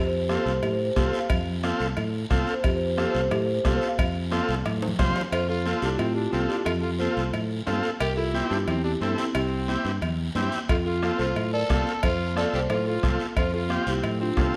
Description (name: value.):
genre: latin, cumbia.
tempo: 179 BPM.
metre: 4/4.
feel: straight.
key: F major.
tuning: A4 = 440 Hz.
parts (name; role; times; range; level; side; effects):
folk marimba with soft mallets; melody; 0.0-14.6 s; C4 to F5; -31 LUFS; equal; none.
fingered electric bass; bass; 0.0-14.5 s; C2 to A2; -31 LUFS; equal; none.
combo organ; accompaniment; 0.3-14.6 s; C4 to C5; -33 LUFS; equal; none.
bombo; percussion; 0.3-5.2, 10.7-14.5 s; none; -29 LUFS; equal; none.
congas; percussion; 0.3-14.5 s; none; -37 LUFS; equal; none.
guiro; percussion; 0.3-14.6 s; none; -43 LUFS; equal; none.
cowbell and timbales; percussion; 0.6-14.5 s; none; -37 LUFS; equal; none.
growling trumpet; second line; 5.3-14.5 s; C4 to A4; -36 LUFS; equal; none.
room: moderate recital hall reverb, RT60 1.4 s.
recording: none.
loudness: -25 LUFS.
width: mono.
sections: 0.0-5.3 A section; 5.3-14.6 B section.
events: marimba solo 0.0-5.3; drum fill 4.3-5.3.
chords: 0.0 F; 5.3 C; 10.7 F.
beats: 0.29 0.63 0.97 | 1.30 1.64 1.97 2.31 | 2.64 2.98 3.31 3.65 | 3.98 4.32 4.65 4.99 | 5.32 5.66 6.00 6.33 | 6.67 7.00 7.34 7.67 | 8.01 8.34 8.68 9.01 | 9.35 9.68 10.02 10.35 | 10.69 11.02 11.36 11.69 | 12.03 12.36 12.70 13.03 | 13.37 13.70 14.04 14.37.